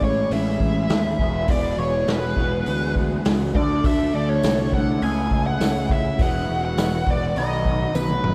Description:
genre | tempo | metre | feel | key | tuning
psychedelic rock | 102 BPM | 4/4 | straight | E mixolydian | A4 = 440 Hz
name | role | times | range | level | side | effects
bluesy overdriven lead guitar | melody | 0.0-8.3 s | B4 to G#5 | -28 LUFS | equal | wah, distortion, analog delay
clear symphonic string section | sustained chords | 0.0-8.3 s | C#3 to A4 | -33 LUFS | equal | none
electric guitar through a small old amp | riff | 0.0-8.3 s | A2 to B4 | -28 LUFS | equal | phaser
fuzz picked electric bass | bass | 0.0-8.3 s | E1 to D#2 | -28 LUFS | equal | overdrive
vintage drum kit | drums | 0.0-8.3 s | hi-hat, kick drum, snare drum, toms | -27 LUFS | equal | none
tambourine | percussion | 4.4-8.1 s | none | -46 LUFS | equal | none
room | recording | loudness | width
moderate plate reverb, RT60 2.4 s | dreamy mix soaked in reverb | -21 LUFS | mono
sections
0.0-8.3 A section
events
drum fill 8.0-8.3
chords
0.0 Amaj7; 1.2 Eadd9; 3.6 D; 5.0 Amaj7/C#; 6.2 Eadd9; 7.4 B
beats
0.33 0.91 | 1.50 2.09 2.67 3.26 | 3.85 4.43 5.02 5.61 | 6.19 6.78 7.36 7.95

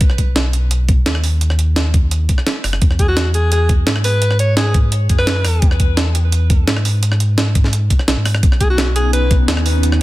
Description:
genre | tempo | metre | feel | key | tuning
liquid drum and bass | 171 BPM | 4/4 | straight | unclear | A4 = 440 Hz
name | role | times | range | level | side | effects
sub bass with octave | bass | 0.0-10.0 s | F#1 to G#2 | -16 LUFS | equal | tube saturation
breakbeat sampler-style drum kit | drums | 0.0-10.0 s | hi-hat, rim click, snare drum | -20 LUFS | right 1 dB | none
electronic kick drum | drums | 0.0-9.4 s | none | -13 LUFS | equal | none
clear alto saxophone | melody | 3.0-5.7, 8.6-9.3 s | F#4 to C#5 | -21 LUFS | equal | ping-pong delay
airy breathy pad | sustained chords | 8.4-10.0 s | B3 to D#4 | -22 LUFS | equal | chorus
room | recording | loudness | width
little or no reverb | dense, heavily limited modern master | -13 LUFS | side -17 dB against mid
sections
0.0-10.0 A section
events
none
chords
0.0 B; 2.8 Eadd9; 8.4 Badd9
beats
| 0.01 0.36 0.71 1.06 | 1.41 1.76 2.12 2.47 | 2.82 3.17 3.52 3.87 | 4.22 4.57 4.92 5.27 | 5.62 5.97 6.33 6.68 | 7.03 7.38 7.73 8.08 | 8.43 8.78 9.13 9.48 | 9.83

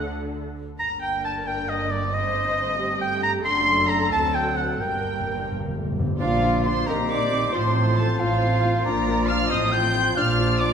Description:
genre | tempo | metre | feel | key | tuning
quick classical-period movement for symphony orchestra | 90 BPM (dotted quarters) | 6/8 | rubato | G minor, Bb major from 6.2 s | A4 = 439 Hz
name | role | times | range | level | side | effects
muted chamber violin section | melody | 0.0-10.7 s | D5 to G6 | -30 LUFS | equal | none
clear oboe | second line | 0.0-10.7 s | C5 to C6 | -26 LUFS | right 1 dB | none
muted chamber violin section | second line | 0.0-10.7 s | F4 to C6 | -30 LUFS | left 2 dB | none
muted chamber viola section | accompaniment | 0.0-10.7 s | C4 to C5 | -33 LUFS | right 2 dB | none
mellow French horn section | sustained chords | 0.0-10.7 s | Eb3 to D4 | -32 LUFS | left 4 dB | none
muted chamber cello section | bass | 0.0-10.7 s | D2 to D3 | -30 LUFS | right 1 dB | none
muted studio double bass section | bass | 0.0-10.7 s | F#1 to D2 | -29 LUFS | right 1 dB | none
timpani | percussion | 4.8-6.1 s | G2 | -30 LUFS | equal | none
clear clarinet | second line | 6.2-10.7 s | F4 to G4 | -33 LUFS | right 1 dB | none
concert flute | second line | 6.2-10.7 s | F5 to G6 | -27 LUFS | equal | none
dark bassoon | accompaniment | 6.2-10.7 s | Eb3 to F3 | -30 LUFS | right 2 dB | none
room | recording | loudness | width
wet scoring stage reverb, RT60 1.7 s | minimal, uncompressed stereo recording | -20 LUFS | side -7 dB against mid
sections
0.0-6.2 A section; 6.2-10.7 B section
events
timpani fill 4.8-6.2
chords
0.0 D; 0.8 Gm; 2.1 Am7b5/G; 3.4 D7/F#; 4.1 D7; 4.8 Gm; 6.2 Bb; 6.9 Cm7/Bb; 7.5 F/A; 8.8 Bb; 9.5 F/A; 10.2 Bb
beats
0.10 | 0.79 1.46 | 2.12 2.79 | 3.45 4.12 | 4.80 5.50 | 6.20 6.87 | 7.54 8.19 | 8.85 9.50 | 10.16

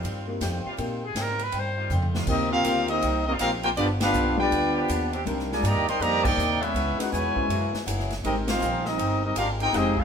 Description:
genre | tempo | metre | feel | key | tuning
jazz, big band swing | 161 BPM | 4/4 | swing 64% on 8ths | Eb major | A4 = 443 Hz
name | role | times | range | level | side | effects
picked swing-style acoustic guitar | accompaniment | 0.0-10.0 s | G2 to Bb4 | -35 LUFS | left 2 dB | none
bright trombone section | sustained chords | 0.0-10.0 s | Eb3 to D5 | -35 LUFS | equal | none
upright bass | bass | 0.0-10.0 s | F1 to Bb2 | -30 LUFS | equal | none
swinging big-band drum kit | drums | 0.0-10.0 s | crash cymbal, hi-hat, kick drum, ride cymbal, snare drum, toms | -33 LUFS | equal | none
warm baby grand piano | accompaniment | 0.3-10.0 s | G3 to C5 | -32 LUFS | left 3 dB | none
warm trumpet | melody | 1.0-1.9 s | Ab4 to C5 | -30 LUFS | right 1 dB | none
warm trumpet section | melody | 2.3-10.0 s | B3 to C6 | -25 LUFS | left 1 dB | none
clear trombone section | second line | 2.3-10.0 s | Cb3 to G4 | -29 LUFS | right 1 dB | none
room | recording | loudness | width
wet stone room reverb, RT60 0.9 s | band playing live in one room | -22 LUFS | side -7 dB against mid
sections
0.0-2.3 A section; 2.3-10.0 B section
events
trumpet solo 0.0-2.3; drum fill 1.9-2.3; band accent 4.0, 6.2, 8.4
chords
0.0 Eb69; 3.8 G7; 5.3 Cm9; 6.8 Dbm7; 7.5 Gb9; 8.2 Abmaj9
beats
0.05 0.42 | 0.79 1.16 1.54 1.91 | 2.28 2.65 3.03 3.40 | 3.77 4.14 4.52 4.89 | 5.26 5.64 6.01 6.38 | 6.75 7.13 7.50 7.87 | 8.24 8.62 8.99 9.36 | 9.73

